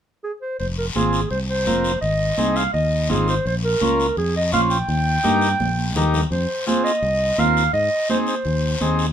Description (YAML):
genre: latin, cumbia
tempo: 168 BPM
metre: 4/4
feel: straight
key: F minor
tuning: A4 = 440 Hz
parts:
  - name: mellow clarinet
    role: melody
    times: 0.2-9.0 s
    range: Ab4 to G5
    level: -22 LUFS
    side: right 1 dB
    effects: none
  - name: fingered electric bass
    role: bass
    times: 0.6-9.1 s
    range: F1 to Ab2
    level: -22 LUFS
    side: left 1 dB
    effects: none
  - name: congas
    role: percussion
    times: 0.6-9.0 s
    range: none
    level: -26 LUFS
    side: right 4 dB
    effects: none
  - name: guiro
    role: percussion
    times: 0.6-9.1 s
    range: none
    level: -31 LUFS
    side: left 5 dB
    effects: none
  - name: combo organ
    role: accompaniment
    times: 1.0-9.1 s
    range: C4 to C5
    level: -22 LUFS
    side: left 1 dB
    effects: none
room: moderate studio ambience, RT60 0.5 s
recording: minimal, uncompressed stereo recording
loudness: -18 LUFS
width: side -9 dB against mid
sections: 0.6-6.3 A section; 6.3-9.1 B section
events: drum fill 5.6-6.3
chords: 0.0 N.C.; 0.6 Fm; 2.0 Ab; 3.5 Bbm; 4.9 Eb; 6.3 Fm; 7.7 Ab